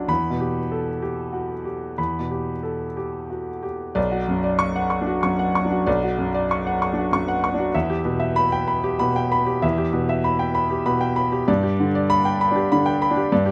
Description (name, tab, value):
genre	neoclassical minimalist piano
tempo	96 BPM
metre	3/4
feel	rubato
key	B minor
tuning	A4 = 439 Hz
part	warm grand piano	solo	0.0-13.5 s	B1 to C#6	-22 LUFS	equal	none
room	light reverb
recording	none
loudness	-22 LUFS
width	mono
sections	0.0-4.0 A section; 4.0-13.5 B section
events	none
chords	0.1 Em; 4.0 Bmadd9; 7.7 Em; 11.5 G